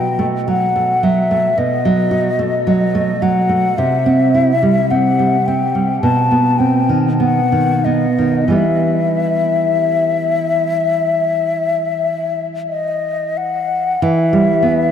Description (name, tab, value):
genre	romantic duo for flute and classical guitar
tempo	42-55 BPM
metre	4/4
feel	rubato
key	E minor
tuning	A4 = 440 Hz
part	mellow hollow concert flute	melody	0.0-14.9 s	D#5 to A5	-16 LUFS	left 4 dB	ping-pong delay
part	nylon-string guitar	accompaniment	0.0-14.9 s	B2 to F#4	-16 LUFS	right 2 dB	none
room	wet huge ambient reverb, RT60 4.2 s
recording	dreamy mix soaked in reverb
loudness	-13 LUFS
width	side -8 dB against mid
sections	0.0-14.0 A section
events	none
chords	0.0 B7; 3.8 C; 6.0 B; 8.5 Em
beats	0.47 1.57 2.66 | 3.78 4.90 6.02 7.20 | 8.54 9.95 11.33 12.69 | 14.03